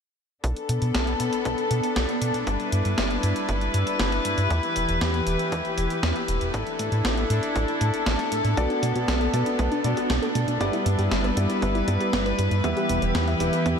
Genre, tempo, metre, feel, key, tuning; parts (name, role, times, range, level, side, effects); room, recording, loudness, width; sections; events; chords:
italo disco; 118 BPM; 4/4; straight; B minor; A4 = 440 Hz
rich chamber string section; sustained chords; 0.4-13.8 s; E3 to B4; -26 LUFS; left 1 dB
chorused synth bass; bass; 0.4-13.8 s; E1 to B2; -26 LUFS; equal
electronic kick drum; drums; 0.4-13.8 s; -33 LUFS; equal; overdrive, high-pass filter on kick
gated 80s digital drum machine; drums; 0.4-13.8 s; hi-hat, snare drum; -30 LUFS; equal; gated reverb, gated reverb snare
soft round pluck; arpeggios; 8.6-13.8 s; A3 to E5; -31 LUFS; right 2 dB; chorus, analog delay
warm grand piano; stabs; 8.6-13.8 s; B3 to E5; -29 LUFS; equal; wide subtle chorus, analog delay
wet huge ambient reverb, RT60 8.1 s; dreamy mix soaked in reverb; -22 LUFS; side -7 dB against mid
0.4-13.8 A section
0.4 Bm7; 2.5 G6; 4.5 Em; 6.5 Asus4; 8.6 Bm7; 10.6 G6; 12.6 Em